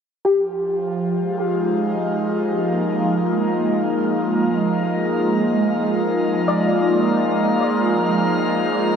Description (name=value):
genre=ambient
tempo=free time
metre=none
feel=none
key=F dorian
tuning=A4 = 443 Hz
part: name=soft round pluck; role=arpeggios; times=0.2-9.0 s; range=G4 to D5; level=-24 LUFS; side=left 2 dB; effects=ensemble chorus, diffuse ambient delay, shimmer reverb
part: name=drifting glass-harmonics texture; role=texture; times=1.4-9.0 s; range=Bb4 to Bb5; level=-29 LUFS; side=right 1 dB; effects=chorus, built-in reverb, shimmer reverb
part: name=airy breathy pad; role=sustained chords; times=0.3-9.0 s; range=F3 to F4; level=-18 LUFS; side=equal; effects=chorus, phaser, shimmer reverb
room=wet huge ambient reverb, RT60 7.5 s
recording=dreamy mix soaked in reverb, cassette tape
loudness=-17 LUFS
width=side -7 dB against mid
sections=0.3-9.0 A section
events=fade-in on synth texture 0.3-9.0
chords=0.3 Fm11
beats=free time